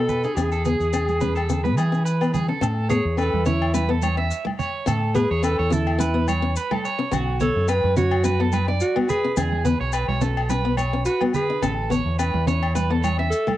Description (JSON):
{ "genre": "highlife guitar band", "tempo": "107 BPM", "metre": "4/4", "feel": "swing 54% on 16ths", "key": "A major", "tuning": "A4 = 439 Hz", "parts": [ { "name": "mellow alto saxophone", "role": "melody", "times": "0.0-13.6 s", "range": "E4 to B4", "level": "-24 LUFS", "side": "equal", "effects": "cassette tape" }, { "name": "picked acoustic archtop guitar", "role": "accompaniment", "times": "0.0-13.6 s", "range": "A3 to D4", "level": "-27 LUFS", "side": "left 4 dB", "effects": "cassette tape" }, { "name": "electric guitar at the edge of break-up", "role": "arpeggios", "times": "0.0-13.5 s", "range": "F#4 to E5", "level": "-27 LUFS", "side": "right 6 dB", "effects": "cassette tape, tape echo" }, { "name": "deep dub fingered electric bass", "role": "bass", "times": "0.0-13.3 s", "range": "A1 to E3", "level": "-23 LUFS", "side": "equal", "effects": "none" }, { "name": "congas", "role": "percussion", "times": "0.1-13.6 s", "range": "none", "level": "-30 LUFS", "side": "right 6 dB", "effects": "none" }, { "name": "maracas", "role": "percussion", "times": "0.1-13.5 s", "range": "none", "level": "-38 LUFS", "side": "left 8 dB", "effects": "none" }, { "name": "agogo bells", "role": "percussion", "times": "0.4-13.6 s", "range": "none", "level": "-31 LUFS", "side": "left 7 dB", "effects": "none" } ], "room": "small room reverb", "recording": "home recording on cassette", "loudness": "-19 LUFS", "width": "side -14 dB against mid", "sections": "0.0-2.6 A section; 2.6-13.6 B section", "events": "alto saxophone solo 2.6-13.6", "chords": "0.4 E; 2.6 A; 7.1 Bm; 9.4 E5; 11.6 A" }